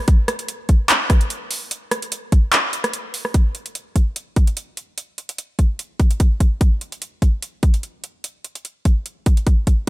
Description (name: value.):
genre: future bass.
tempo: 147 BPM.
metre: 4/4.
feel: swing 54% on 16ths, half-time.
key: none.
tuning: none.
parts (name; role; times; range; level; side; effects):
big-room dance drum kit; drums; 0.1-9.8 s; handclaps, hi-hat, rim click; -21 LUFS; equal; overdrive.
electronic kick drum; drums; 0.1-9.8 s; none; -14 LUFS; equal; overdrive.
room: digital ambience.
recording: none.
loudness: -17 LUFS.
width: side -18 dB against mid.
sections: 0.0-3.3 A section; 3.3-9.9 B section.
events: drop 0.0-3.3; kick drops out 2.5-3.3.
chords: none.